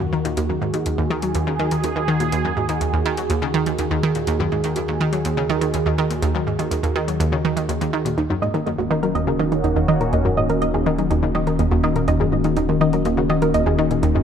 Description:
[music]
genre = ambient, sequencer-driven space music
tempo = 123 BPM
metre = 4/4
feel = straight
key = Eb minor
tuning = A4 = 440 Hz
[part]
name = sweeping resonant pad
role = sustained chords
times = 0.0-14.2 s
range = Eb2 to Bb4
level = -22 LUFS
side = equal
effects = chorus
[part]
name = analog pluck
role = riff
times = 0.0-14.2 s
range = Eb2 to Gb3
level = -21 LUFS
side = equal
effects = chorus, ping-pong delay
[part]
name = electronic hi-hat and bongos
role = percussion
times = 0.3-14.1 s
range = none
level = -36 LUFS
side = equal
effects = ping-pong delay
[part]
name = soft round pluck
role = arpeggios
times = 8.2-14.2 s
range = Bb3 to Eb5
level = -23 LUFS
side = right 2 dB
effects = chorus, auto-pan, cassette tape, ping-pong delay
[part]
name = warm sub bass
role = bass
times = 8.2-14.2 s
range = Eb1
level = -29 LUFS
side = equal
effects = none
[sound]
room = light reverb, digital ambience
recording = none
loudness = -18 LUFS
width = side -8 dB against mid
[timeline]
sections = 0.0-8.2 A section; 8.2-14.2 B section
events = fade-in on drum 8.2-14.2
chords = 0.0 Ebm

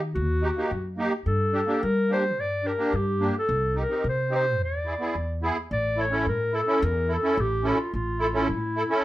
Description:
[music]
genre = klezmer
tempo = 108 BPM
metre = 4/4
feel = straight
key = A phrygian dominant from 5.7 s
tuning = A4 = 440 Hz
[part]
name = upright bass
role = bass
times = 0.0-8.8 s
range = A1 to G3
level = -28 LUFS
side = equal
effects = none
[part]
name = mellow clarinet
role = melody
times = 0.1-9.0 s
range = E4 to D5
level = -26 LUFS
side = left 1 dB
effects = none
[part]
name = musette accordion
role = accompaniment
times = 0.4-9.0 s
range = Bb3 to A4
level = -27 LUFS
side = right 1 dB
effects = none
[sound]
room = moderate studio reverb, RT60 0.6 s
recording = none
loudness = -23 LUFS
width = side -15 dB against mid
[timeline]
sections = 0.0-5.7 A section; 5.7-9.0 B section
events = none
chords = 0.0 Eb; 1.3 Gm; 3.5 Cm; 4.6 E7; 5.7 A

